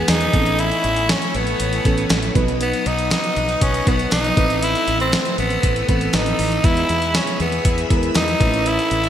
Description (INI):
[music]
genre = 1980s-style pop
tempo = 119 BPM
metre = 4/4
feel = straight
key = unclear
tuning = A4 = 440 Hz
[part]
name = raspy tenor saxophone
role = melody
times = 0.0-9.1 s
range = B3 to E4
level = -20 LUFS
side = equal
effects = digital delay
[part]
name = mellow FM electric piano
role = accompaniment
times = 0.0-9.1 s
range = E3 to B4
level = -25 LUFS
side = right 1 dB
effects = chorus
[part]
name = overdriven electric guitar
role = accompaniment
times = 0.0-9.1 s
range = E2 to B3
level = -31 LUFS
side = left 5 dB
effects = none
[part]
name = string machine, violins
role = sustained chords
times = 0.0-9.1 s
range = G#4 to E6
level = -28 LUFS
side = equal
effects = ensemble chorus
[part]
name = woody fretless electric bass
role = bass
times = 0.1-9.1 s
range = A1 to E2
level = -24 LUFS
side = equal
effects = ensemble chorus
[part]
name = clean 12-bit digital drum machine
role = drums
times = 0.1-9.1 s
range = hi-hat, kick drum, snare drum, tambourine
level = -20 LUFS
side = equal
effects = gated reverb
[part]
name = group handclap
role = percussion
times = 0.1-8.3 s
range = none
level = barely audible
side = none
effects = none
[sound]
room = moderate lush hall reverb, RT60 2.0 s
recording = bright 1980s-style digital production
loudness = -16 LUFS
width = side -10 dB against mid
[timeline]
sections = 0.0-9.1 A section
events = none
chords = 0.3 Aadd9; 2.4 B; 4.4 Amadd9; 6.6 E; 8.4 Aadd9